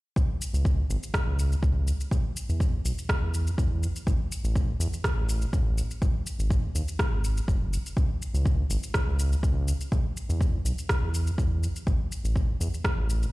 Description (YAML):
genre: afro house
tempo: 123 BPM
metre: 4/4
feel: straight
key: C# minor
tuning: A4 = 439 Hz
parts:
  - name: round analog bass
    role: bass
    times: 0.2-13.3 s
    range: F#1 to E2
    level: -26 LUFS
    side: equal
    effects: sidechain pumping
  - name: electronic kick drum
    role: drums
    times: 0.2-12.9 s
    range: none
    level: -26 LUFS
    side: equal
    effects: none
  - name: electronic shaker and rim click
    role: drums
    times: 0.2-13.3 s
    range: none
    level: -36 LUFS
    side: equal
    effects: none
room: little or no reverb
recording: played on a big sound system in a bare room, large studio reverb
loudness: -24 LUFS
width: side -20 dB against mid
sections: 0.2-13.3 A section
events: none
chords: none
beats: | 0.16 0.65 1.14 1.63 | 2.12 2.60 3.09 3.58 | 4.07 4.55 5.04 5.53 | 6.02 6.50 6.99 7.48 | 7.97 8.46 8.94 9.43 | 9.92 10.41 10.89 11.38 | 11.87 12.36 12.85